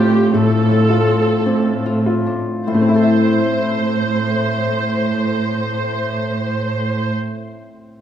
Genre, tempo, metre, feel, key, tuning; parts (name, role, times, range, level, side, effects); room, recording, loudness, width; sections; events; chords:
cinematic, emotional film score for orchestra; 49 BPM; 4/4; rubato; A minor; A4 = 440 Hz
bright grand piano; accompaniment; 0.0-8.0 s; A2 to E5; -21 LUFS; left 3 dB
rich symphonic viola section; accompaniment; 0.0-7.1 s; G4 to C5; -21 LUFS; equal
concert harp; arpeggios; 0.0-7.5 s; A2 to E5; -24 LUFS; left 6 dB
rich symphonic cello section; bass; 0.0-7.1 s; A2; -19 LUFS; right 3 dB
light reverb; close, detailed microphones; -15 LUFS; side -10 dB against mid
0.0-2.7 A section; 2.7-7.6 B section
slowing down 0.0-2.7
0.0 Dm7/A; 2.7 Am